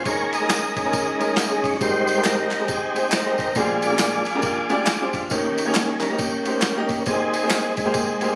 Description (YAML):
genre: uptempo gospel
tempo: 137 BPM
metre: 4/4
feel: swing 61% on 8ths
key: Ab major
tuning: A4 = 440 Hz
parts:
  - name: bright upright piano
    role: accompaniment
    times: 0.0-8.4 s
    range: Ab1 to Eb5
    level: -27 LUFS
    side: equal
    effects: none
  - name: tonewheel organ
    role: sustained chords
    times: 0.0-8.4 s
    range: Ab2 to Eb5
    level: -25 LUFS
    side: equal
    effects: slow rotary speaker, chorus vibrato
  - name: lo-fi sampler-style drum kit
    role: drums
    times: 0.1-8.3 s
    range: kick drum, ride cymbal, snare drum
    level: -30 LUFS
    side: equal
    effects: none
  - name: tambourine and handclaps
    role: percussion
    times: 0.1-8.3 s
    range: none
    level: -32 LUFS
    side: equal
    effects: none
room: light reverb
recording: recorded on a phone in the room, studio reverb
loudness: -22 LUFS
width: mono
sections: 0.0-8.4 A section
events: tonewheel organ solo 0.0-8.4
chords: 0.1 Eb7sus4; 1.8 Abmaj9; 3.6 Bb13; 5.3 Eb7; 7.1 Abmaj9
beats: | 0.06 0.50 0.93 1.37 | 1.81 2.25 2.69 3.12 | 3.56 4.00 4.44 4.88 | 5.32 5.75 6.19 6.63 | 7.07 7.51 7.95